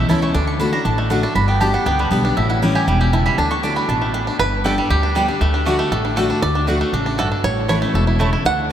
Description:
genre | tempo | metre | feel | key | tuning
bluegrass | 237 BPM | 4/4 | straight | D major | A4 = 439 Hz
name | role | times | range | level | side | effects
bluegrass banjo | melody | 0.0-8.7 s | G3 to F#5 | -21 LUFS | right 2 dB | none
picked steel-string acoustic guitar | accompaniment | 0.0-8.7 s | E2 to G4 | -21 LUFS | left 2 dB | none
mandolin | stabs | 0.0-8.3 s | A3 to D6 | -23 LUFS | right 2 dB | none
upright bass | bass | 0.0-8.7 s | E1 to D2 | -20 LUFS | equal | none
room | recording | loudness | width
wet huge ambient reverb, RT60 7.6 s | in a vast, echoing space | -15 LUFS | side -10 dB against mid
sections
0.0-4.4 A section; 4.4-8.7 A section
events
mandolin solo 0.0-4.4; five-string banjo solo 4.4-8.7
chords
0.3 D; 1.4 G; 2.4 A7; 3.4 D; 4.4 G; 5.4 D; 7.4 A

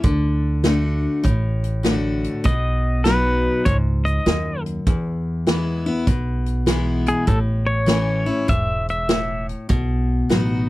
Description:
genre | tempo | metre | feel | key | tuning
honky-tonk and classic country | 99 BPM | 4/4 | swing 65% on 8ths | A major | A4 = 441 Hz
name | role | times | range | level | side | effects
picked steel-string acoustic guitar | accompaniment | 0.0-10.7 s | E2 to F#4 | -22 LUFS | left 1 dB | none
upright bass | bass | 0.0-10.7 s | E1 to E2 | -23 LUFS | equal | none
unplugged drum kit | drums | 0.0-10.5 s | hi-hat, kick drum, snare drum | -21 LUFS | equal | none
pedal steel guitar | melody | 2.5-9.5 s | G#4 to E5 | -23 LUFS | equal | none
room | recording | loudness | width
little or no reverb | none | -18 LUFS | side -17 dB against mid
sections
0.0-10.7 A section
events
none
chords
0.0 D; 2.5 B; 4.9 E; 7.3 A; 9.7 B

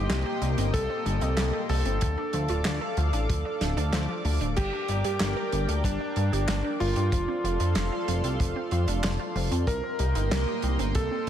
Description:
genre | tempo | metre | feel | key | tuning
synthwave | 94 BPM | 4/4 | straight | G minor | A4 = 440 Hz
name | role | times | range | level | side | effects
bright electric grand piano | melody | 0.0-11.3 s | D4 to Bb4 | -33 LUFS | equal | tape echo
soft synth bell | second line | 0.0-11.3 s | D4 to Bb4 | -40 LUFS | left 3 dB | none
chorused pulse-width pad | sustained chords | 0.0-11.3 s | Bb3 to D6 | -33 LUFS | equal | sidechain pumping
analog pluck | arpeggios | 0.0-11.3 s | F3 to Bb4 | -35 LUFS | right 2 dB | chorus, ping-pong delay
chorused synth bass | bass | 0.0-11.3 s | D1 to G2 | -27 LUFS | equal | sidechain pumping
warm soul drum kit | drums | 0.1-11.3 s | crash cymbal, handclaps, hi-hat, snare drum | -33 LUFS | right 1 dB | none
kick drum | drums | 0.7-11.1 s | none | -28 LUFS | equal | none
room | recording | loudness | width
moderate plate reverb, RT60 2.1 s | dreamy mix soaked in reverb | -24 LUFS | side -10 dB against mid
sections
0.0-11.3 A section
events
none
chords
0.0 Cm7; 2.0 Dm; 4.6 Gm; 7.1 F6; 9.7 Cm7

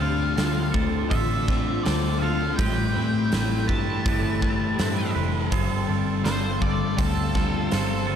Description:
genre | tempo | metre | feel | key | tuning
rock, shoegaze and dream pop | 82 BPM | 4/4 | straight | A minor | A4 = 439 Hz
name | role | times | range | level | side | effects
octave-fuzz lead guitar | melody | 0.0-8.0 s | A4 to A5 | -31 LUFS | left 1 dB | distortion, slapback echo
granular cloud pad | sustained chords | 0.0-8.2 s | F4 to D6 | -35 LUFS | left 2 dB | built-in reverb
fingerpicked twelve-string acoustic guitar | arpeggios | 0.0-8.2 s | F3 to B4 | -34 LUFS | right 9 dB | lush chorus, slapback echo
thick fuzz guitar | riff | 0.0-8.2 s | G2 to D4 | -28 LUFS | left 10 dB | distortion, lush chorus
twangy electric guitar | riff | 0.0-8.2 s | A2 to B4 | -31 LUFS | right 12 dB | reverse reverb
vintage muted picked electric bass | bass | 0.0-8.2 s | F1 to A2 | -27 LUFS | equal | none
huge arena drum kit | drums | 0.4-7.9 s | hi-hat, kick drum, snare drum | -27 LUFS | equal | none
room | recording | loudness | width
little or no reverb | dark, warm production | -21 LUFS | side -8 dB against mid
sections
0.0-8.2 A section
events
none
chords
0.0 Dm7; 2.6 Am9; 5.5 G9sus4

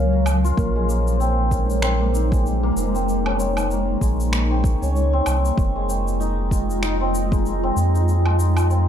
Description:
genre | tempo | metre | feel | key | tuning
organic downtempo | 96 BPM | 4/4 | swing 58% on 16ths | Bb minor | A4 = 439 Hz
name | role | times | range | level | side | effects
granular cloud pad | sustained chords | 0.0-8.9 s | Gb3 to Db6 | -26 LUFS | equal | built-in reverb, sidechain pumping
santur | arpeggios | 0.0-8.9 s | Ab3 to F5 | -25 LUFS | left 2 dB | low-pass filter, digital delay
warm sub bass | bass | 0.0-8.9 s | F1 to F2 | -21 LUFS | equal | sidechain pumping
bronze singing bowl | texture | 0.0-8.9 s | Bb3 to Bb4 | -33 LUFS | right 2 dB | none
electronic woodblock, shaker and finger snaps | drums | 0.3-8.8 s | none | -30 LUFS | equal | overdrive
electronic kick drum | drums | 0.6-7.4 s | none | -22 LUFS | equal | overdrive
room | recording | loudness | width
light reverb | dark, warm production | -18 LUFS | side -9 dB against mid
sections
0.0-8.9 A section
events
none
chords
0.0 Gbmaj7; 0.6 Bbm11; 5.6 Fm7

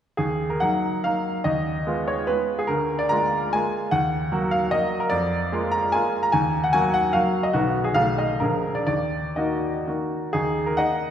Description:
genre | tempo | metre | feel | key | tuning
classical, romantic triple-time dance for piano with dotted rhythms | 115-161 BPM | 3/4 | rubato | Eb minor | A4 = 441 Hz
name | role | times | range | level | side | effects
bright baby grand piano | solo | 0.2-11.1 s | Bb1 to Bb5 | -21 LUFS | equal | none
room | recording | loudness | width
wet concert hall reverb, RT60 2.2 s | recorded in a church or concert hall | -21 LUFS | side -9 dB against mid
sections
0.2-10.3 A section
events
none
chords
0.2 Ebm; 1.4 Fm7b5/Eb; 2.7 Bb7/D; 3.9 Ebm; 5.1 Bb7/F; 6.3 Ebm; 7.5 B; 8.0 B7; 8.4 Bb7; 8.9 Ebm

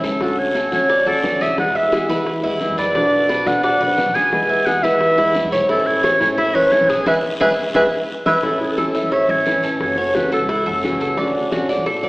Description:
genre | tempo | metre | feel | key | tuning
latin, Cuban son and guajira | 175 BPM | 4/4 | straight | A major | A4 = 436 Hz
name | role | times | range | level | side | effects
flamenco guitar | accompaniment | 0.0-12.1 s | B2 to F#4 | -23 LUFS | equal | none
Cuban tres | arpeggios | 0.0-12.1 s | D4 to E5 | -20 LUFS | equal | none
upright bass | bass | 0.0-12.1 s | F#1 to E3 | -31 LUFS | equal | none
bongos | percussion | 0.0-12.1 s | none | -27 LUFS | left 1 dB | none
guiro | percussion | 0.0-12.1 s | none | -34 LUFS | left 1 dB | none
clear clarinet | melody | 0.2-11.0 s | G#4 to G#5 | -18 LUFS | equal | none
room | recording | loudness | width
wet recital hall reverb, RT60 1.7 s | recorded in a church or concert hall, AM radio sound | -15 LUFS | side -23 dB against mid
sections
0.0-8.4 A section; 8.4-12.1 B section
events
band accent 7.1-8.4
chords
0.2 Dmaj7; 1.6 E; 3.0 Bm; 4.3 E; 5.7 A; 7.1 E; 8.4 A; 9.8 F#m7; 11.2 Dmaj7

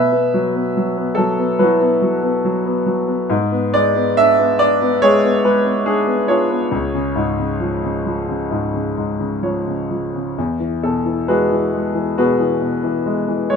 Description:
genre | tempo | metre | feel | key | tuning
classical, lyrical solo piano | 63-72 BPM | 4/4 | rubato | unclear | A4 = 440 Hz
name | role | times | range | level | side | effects
clear concert grand piano | solo | 0.0-13.6 s | C#2 to E5 | -15 LUFS | equal | none
room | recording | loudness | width
moderate studio reverb, RT60 0.6 s | none | -15 LUFS | side -6 dB against mid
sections
0.0-13.6 A section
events
grand piano fill 9.0-10.4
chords
0.0 Bsus4; 3.3 G#dim; 6.7 C#; 10.4 Eadd9

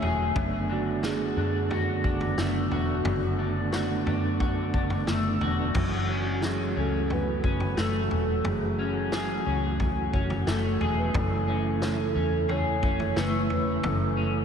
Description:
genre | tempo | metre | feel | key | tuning
dream pop | 89 BPM | 4/4 | straight | unclear | A4 = 441 Hz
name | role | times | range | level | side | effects
soft octave-layered synth lead | melody | 0.0-14.4 s | F#4 to E5 | -34 LUFS | right 4 dB | chorus, phaser, ping-pong delay
mellow tonewheel organ | sustained chords | 0.0-14.4 s | C#3 to F#4 | -31 LUFS | right 4 dB | chorus vibrato, slow rotary speaker
electric guitar at the edge of break-up | arpeggios | 0.0-14.4 s | F#2 to G#4 | -30 LUFS | left 4 dB | analog chorus, ping-pong delay
vintage muted fingered electric bass | bass | 0.0-14.4 s | E1 to F#2 | -30 LUFS | equal | none
vintage drum kit | drums | 0.0-14.0 s | crash cymbal, kick drum, snare drum, toms | -32 LUFS | equal | none
room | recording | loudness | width
moderate cathedral reverb, RT60 5.9 s | dreamy mix soaked in reverb | -24 LUFS | side -7 dB against mid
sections
0.0-5.8 A section; 5.8-14.4 A section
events
none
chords
0.4 Bm7; 5.8 Amaj13/E

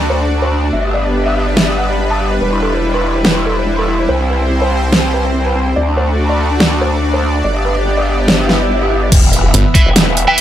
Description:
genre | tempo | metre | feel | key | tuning
heavy wobble dubstep | 143 BPM | 4/4 | half-time | E minor | A4 = 441 Hz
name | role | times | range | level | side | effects
felt-muted upright piano | melody | 0.0-9.1 s | C4 to A5 | -19 LUFS | equal | ping-pong delay
supersaw pad | sustained chords | 0.0-10.4 s | E3 to E5 | -19 LUFS | equal | sidechain pumping, low-pass filter
growl bass | bass | 0.0-10.3 s | E1 to D2 | -16 LUFS | equal | chorus, overdrive
dubstep drum kit | drums | 1.6-10.4 s | crash cymbal, hi-hat, snare drum, woodblock | -13 LUFS | equal | overdrive
swell and impact | sound effects | 8.5-10.4 s | none | -17 LUFS | equal | none
electronic kick drum | drums | 9.1-9.8 s | none | -9 LUFS | equal | overdrive
snarling distorted saw bass | bass | 9.5-9.6 s | G1 | -10 LUFS | equal | distortion, overdrive
heavy high-gain guitar | stabs | 9.7-10.4 s | E4 to E5 | -15 LUFS | right 1 dB | distortion, ping-pong delay
room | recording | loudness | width
little or no reverb | none | -11 LUFS | side -11 dB against mid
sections
0.0-9.1 A section; 9.1-10.4 B section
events
swell 8.5-9.1; drop 9.1-10.4; impact 9.1-10.4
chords
0.0 D; 0.7 G; 2.4 Em7; 4.1 C; 5.8 D; 7.4 G; 9.1 E5

